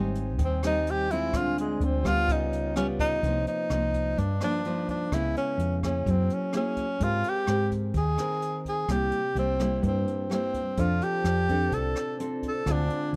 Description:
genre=bossa nova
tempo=127 BPM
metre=4/4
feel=straight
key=C minor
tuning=A4 = 440 Hz
part: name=nylon-string guitar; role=accompaniment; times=0.0-13.2 s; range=G2 to Bb4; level=-33 LUFS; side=equal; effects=none
part: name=glass harmonica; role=sustained chords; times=0.0-3.2, 10.8-13.2 s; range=G3 to A5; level=-44 LUFS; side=equal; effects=none
part: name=hollow-body short-scale fingered electric bass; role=bass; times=0.0-13.2 s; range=Ab1 to Ab2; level=-31 LUFS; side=equal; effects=none
part: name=jazz brush drum kit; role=drums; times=0.2-13.2 s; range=hi-hat, kick drum, rim click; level=-38 LUFS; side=equal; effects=none
part: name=breathy tenor saxophone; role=melody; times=0.4-13.2 s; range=Ab3 to A4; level=-31 LUFS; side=equal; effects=none
room=light reverb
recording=dark, warm production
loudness=-27 LUFS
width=mono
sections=0.0-3.2 A section; 3.2-13.2 B section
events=tenor saxophone solo 0.0-3.2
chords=0.0 Abmaj7; 1.3 Dm7b5; 2.3 Db7#11; 3.2 Cm11; 5.1 Dbm7; 6.1 F#9; 7.0 Abmaj9; 8.9 C7; 10.8 F6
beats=0.40 0.87 | 1.34 1.81 2.28 2.76 | 3.23 3.70 4.17 4.64 | 5.12 5.59 6.06 6.53 | 7.00 7.47 7.95 8.42 | 8.89 9.36 9.83 10.30 | 10.78 11.25 11.72 12.19 | 12.66 13.13

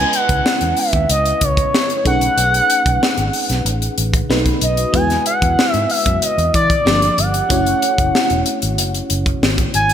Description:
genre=polished 1980s jazz-funk pop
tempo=94 BPM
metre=4/4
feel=straight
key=E major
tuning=A4 = 440 Hz
part: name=expressive synth lead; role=melody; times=0.0-9.9 s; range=C#5 to G#5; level=-17 LUFS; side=equal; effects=chorus
part: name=FM electric piano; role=accompaniment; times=0.0-9.9 s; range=F3 to D5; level=-22 LUFS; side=left 1 dB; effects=analog chorus
part: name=vintage muted fingered electric bass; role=bass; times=0.0-9.9 s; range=E1 to E3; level=-20 LUFS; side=equal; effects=none
part: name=crisp fusion drum kit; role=drums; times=0.1-9.9 s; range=hi-hat, kick drum, snare drum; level=-18 LUFS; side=left 1 dB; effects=gated reverb
room=moderate lush hall reverb, RT60 2.9 s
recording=bright 1980s-style digital production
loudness=-14 LUFS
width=side -9 dB against mid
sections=0.0-9.9 A section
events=none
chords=0.0 C#m9; 2.1 B13; 4.3 B7; 4.9 Eadd9; 6.9 Gm7; 7.5 F#m7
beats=0.45 1.09 1.74 | 2.38 3.02 3.66 4.30 | 4.94 5.58 6.22 6.86 | 7.50 8.14 8.78 9.42

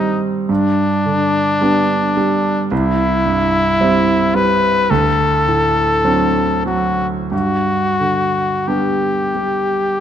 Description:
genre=classical, romantic duo for trumpet and grand piano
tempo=44-56 BPM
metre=4/4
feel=rubato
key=G major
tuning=A4 = 440 Hz
part: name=clear trumpet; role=melody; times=0.0-10.0 s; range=D4 to B4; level=-16 LUFS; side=left 2 dB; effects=none
part: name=clear concert grand piano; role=accompaniment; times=0.0-10.0 s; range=C2 to E4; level=-17 LUFS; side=right 3 dB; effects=none
room=moderate scoring stage reverb, RT60 1.6 s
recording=close, detailed microphones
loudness=-14 LUFS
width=side -9 dB against mid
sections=0.0-10.0 A section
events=none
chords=0.5 G; 2.7 C; 4.9 D7; 7.3 G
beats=0.49 1.61 | 2.72 3.79 4.90 6.05 | 7.32 8.67 10.00

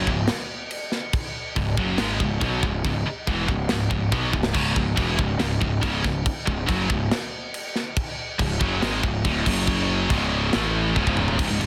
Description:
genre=heavy metal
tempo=140 BPM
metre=4/4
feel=straight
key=C# minor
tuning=A4 = 438 Hz
part: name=scooped high-gain guitar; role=riff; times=0.0-11.7 s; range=C#2 to B3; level=-27 LUFS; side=equal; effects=distortion
part: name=fuzz picked electric bass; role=bass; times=0.0-11.7 s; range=C#1 to B1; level=-29 LUFS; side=equal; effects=overdrive
part: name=tight metal drum kit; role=drums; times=0.1-11.7 s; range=crash cymbal, kick drum, snare drum, splash cymbal, toms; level=-28 LUFS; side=equal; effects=none
room=small room reverb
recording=dense, heavily limited modern master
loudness=-24 LUFS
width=mono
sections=0.0-11.4 A section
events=half time 0.0-11.4; drum fill 4.3, 11.0-11.4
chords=0.0 C#m; 9.5 F#5; 10.1 C#5; 10.5 A5; 11.0 C#5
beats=0.29 0.72 | 1.14 1.57 1.99 2.42 | 2.84 3.27 3.69 4.12 | 4.55 4.97 5.40 5.83 | 6.25 6.68 7.11 7.54 | 7.97 8.39 8.82 9.25 | 9.68 10.11 10.54 10.97 | 11.40

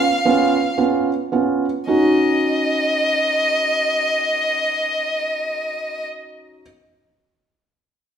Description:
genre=pop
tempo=35-39 BPM (dotted quarters)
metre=6/8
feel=straight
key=Eb minor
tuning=A4 = 441 Hz
part: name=rich violin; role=melody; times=0.0-6.1 s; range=Eb5 to F5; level=-19 LUFS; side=equal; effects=none
part: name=felt-muted upright piano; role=accompaniment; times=0.0-6.6 s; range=Cb4 to Gb4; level=-18 LUFS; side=right 2 dB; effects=none
room=wet large studio reverb, RT60 1.3 s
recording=band playing live in one room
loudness=-17 LUFS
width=side -8 dB against mid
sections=0.0-1.9 A section; 1.9-5.3 B section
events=slowing down 0.0-1.9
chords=0.0 Db7; 1.9 Ebm7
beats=0.25 | 1.87 3.58

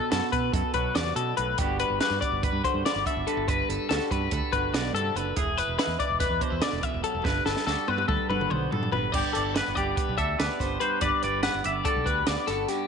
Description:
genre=math rock and midwest emo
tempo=286 BPM (eighths)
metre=9/8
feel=straight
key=G major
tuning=A4 = 440 Hz
part: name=twangy electric guitar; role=accompaniment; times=0.0-12.9 s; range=G2 to B4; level=-32 LUFS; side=right 14 dB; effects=none
part: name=twelve-string electric guitar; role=arpeggios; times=0.0-12.9 s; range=G4 to F#5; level=-28 LUFS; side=left 8 dB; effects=warbly pitch drift
part: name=modern bright fingered electric bass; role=bass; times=0.1-12.6 s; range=E1 to B2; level=-33 LUFS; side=right 2 dB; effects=none
part: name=compact cocktail drum kit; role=drums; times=0.1-12.8 s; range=crash cymbal, hi-hat, kick drum, snare drum, toms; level=-30 LUFS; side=right 2 dB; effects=none
part: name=twangy electric guitar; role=melody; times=9.2-12.7 s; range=G4 to E5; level=-30 LUFS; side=equal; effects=none
room=moderate echo chamber reverb, RT60 1.6 s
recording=1960s-style stereo with parts hard left and right, nothing above 10.9 kHz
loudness=-24 LUFS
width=side -6 dB against mid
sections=0.0-9.1 A section; 9.1-12.9 B section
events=drum fill 7.2-9.1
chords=0.0 Bm7; 1.6 Gmaj7; 5.4 E7; 7.2 Gmaj7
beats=0.12 0.33 0.54 0.75 0.96 1.17 1.38 | 1.59 1.80 2.01 2.22 2.43 2.64 2.85 3.06 3.27 | 3.48 3.69 3.90 4.11 4.32 4.53 4.73 4.94 5.15 | 5.36 5.57 5.78 5.99 6.20 6.41 6.62 6.83 7.04 | 7.25 7.46 7.67 7.88 8.09 8.30 8.51 8.72 8.93 | 9.13 9.34 9.55 9.76 9.97 10.18 10.39 10.60 10.81 | 11.02 11.23 11.44 11.65 11.86 12.07 12.28 12.49 12.70

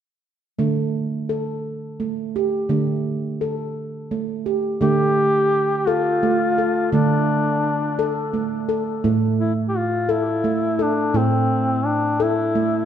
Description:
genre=world meditative, meditative tuned percussion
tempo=57 BPM (dotted quarters)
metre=6/8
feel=straight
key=D minor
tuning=A4 = 441 Hz
part: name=handpan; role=arpeggios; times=0.6-12.8 s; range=A2 to A4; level=-21 LUFS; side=right 2 dB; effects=none
part: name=warm duduk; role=melody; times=4.8-12.8 s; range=C4 to G4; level=-20 LUFS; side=left 2 dB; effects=tape echo
room=wet scoring stage reverb, RT60 1.6 s, small room ambience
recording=none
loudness=-18 LUFS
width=side -9 dB against mid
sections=0.6-4.8 A section; 4.8-12.8 B section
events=none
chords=0.6 D5; 4.8 Dm; 9.0 A5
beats=| 0.59 1.65 | 2.70 3.76 | 4.81 5.87 | 6.92 7.98 | 9.03 10.08 | 11.14 12.19

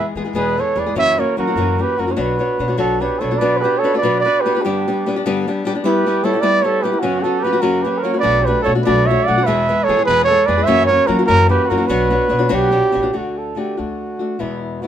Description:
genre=mexican folk, mariachi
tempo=98 BPM (dotted quarters)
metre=6/8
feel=rubato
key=B minor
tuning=A4 = 437 Hz
part: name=dark trumpet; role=melody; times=0.0-14.9 s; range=E4 to F#5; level=-17 LUFS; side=right 3 dB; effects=none
part: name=mellow trumpet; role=second line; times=0.0-12.7 s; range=C#4 to D5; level=-23 LUFS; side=right 4 dB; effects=none
part: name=nylon-string guitar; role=accompaniment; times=0.0-14.9 s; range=E2 to C#5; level=-19 LUFS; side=left 3 dB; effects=none
part: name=upright bass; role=bass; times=0.2-3.3, 8.3-14.8 s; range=A1 to F#3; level=-22 LUFS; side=equal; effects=none
room=light reverb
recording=minimal, uncompressed stereo recording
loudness=-14 LUFS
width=side -10 dB against mid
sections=0.0-3.4 A section; 3.4-13.1 A section; 13.1-14.9 B section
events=none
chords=0.0 E; 1.0 F#7; 2.2 Bmadd9; 3.4 Bm; 4.6 G; 5.8 Em/G; 7.0 F#sus4; 7.6 F#; 8.3 Bm7; 9.5 E; 10.7 F#7; 11.9 Bmadd9; 13.1 D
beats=0.35 | 0.96 1.57 | 2.17 2.78 | 3.40 4.02 | 4.63 5.24 | 5.84 6.44 | 7.04 7.64 | 8.25 8.87 | 9.47 10.08 | 10.69 11.29 | 11.89 12.51 | 13.14 13.78 | 14.40

